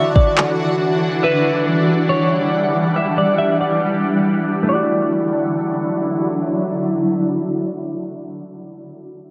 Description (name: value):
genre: hip hop, atmospheric cloud-rap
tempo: free time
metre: none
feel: none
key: D major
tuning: A4 = 440 Hz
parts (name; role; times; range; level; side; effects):
- semi-hollow electric guitar; melody; 0.0-5.9 s; B4 to E5; -23 LUFS; equal; low-pass filter, tape echo
- shimmering ambient pad; sustained chords; 0.0-8.3 s; D3 to F#5; -20 LUFS; equal; chorus, built-in reverb, phaser, sidechain pumping
- concert harp; arpeggios; 0.0-8.4 s; A3 to E5; -28 LUFS; equal; low-pass filter, tape echo
- twinkling granular texture; texture; 0.0-8.3 s; D4 to C#6; -34 LUFS; equal; built-in reverb
- smooth R&B drum kit; drums; 0.2-0.5 s; handclaps, kick drum; -16 LUFS; equal; none
room: wet digital room reverb, RT60 1.1 s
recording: low-pass filter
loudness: -18 LUFS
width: mono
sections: 0.0-4.7 A section; 4.7-8.1 B section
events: filter sweep 0.0-4.7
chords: 0.0 Dmaj9; 1.2 Em9; 4.7 Dmaj9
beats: free time